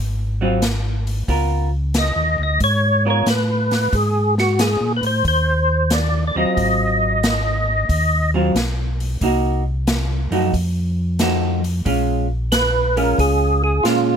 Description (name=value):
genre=soul jazz organ trio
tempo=91 BPM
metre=4/4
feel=swing 67% on 8ths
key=Ab mixolydian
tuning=A4 = 442 Hz
part: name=mellow tonewheel organ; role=bass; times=0.0-14.2 s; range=Ab1 to Bb2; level=-20 LUFS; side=equal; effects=slow rotary speaker
part: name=vintage hollow-body jazz guitar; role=accompaniment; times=0.4-14.2 s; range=F3 to Bb4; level=-20 LUFS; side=right 2 dB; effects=none
part: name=swinging big-band drum kit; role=drums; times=0.6-14.1 s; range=hi-hat, kick drum, snare drum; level=-24 LUFS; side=equal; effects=none
part: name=percussive tonewheel organ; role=melody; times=2.0-8.3, 12.5-14.2 s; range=F4 to Eb5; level=-19 LUFS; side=equal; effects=slow rotary speaker, chorus vibrato
room=little or no reverb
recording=close, detailed microphones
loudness=-16 LUFS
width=side -7 dB against mid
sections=0.0-14.2 A section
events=none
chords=0.0 Ab6; 1.3 Db13; 3.9 Ab13; 9.2 Cm7b5; 10.5 F7b9; 11.9 Bbm7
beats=0.61 | 1.28 1.94 2.60 3.26 | 3.92 4.59 5.25 5.91 | 6.57 7.23 7.89 8.56 | 9.22 9.88 10.54 11.20 | 11.86 12.52 13.19 13.85